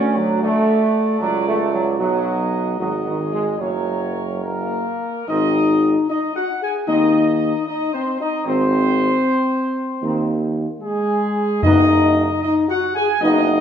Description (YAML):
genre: classical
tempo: 76 BPM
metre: 4/4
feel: straight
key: unclear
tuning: A4 = 440 Hz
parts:
  - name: mellow trumpet section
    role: melody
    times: 0.0-13.6 s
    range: F#4 to G#5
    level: -23 LUFS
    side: right 1 dB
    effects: none
  - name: clear trombone section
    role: sustained chords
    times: 0.0-13.5 s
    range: D#3 to C#4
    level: -23 LUFS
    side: right 3 dB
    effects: none
  - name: dark French horn section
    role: sustained chords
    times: 0.0-13.6 s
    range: D#3 to G#4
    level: -20 LUFS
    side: left 2 dB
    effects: none
  - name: clear tuba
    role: bass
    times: 0.0-13.6 s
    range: F#1 to D#2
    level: -22 LUFS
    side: right 3 dB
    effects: none
  - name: timpani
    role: percussion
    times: 11.6-12.8 s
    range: F#2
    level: -22 LUFS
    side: right 1 dB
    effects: none
room: wet stone room reverb, RT60 1.4 s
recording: none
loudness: -16 LUFS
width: side -8 dB against mid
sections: 0.0-5.3 A section; 5.3-13.6 B section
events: none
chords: 0.0 D; 2.0 B; 3.6 F#; 5.3 G#; 11.6 B/F#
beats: 0.42 1.21 | 2.00 2.80 3.61 4.43 | 5.29 6.09 6.88 7.67 | 8.46 9.24 10.02 10.80 | 11.62 12.42 13.21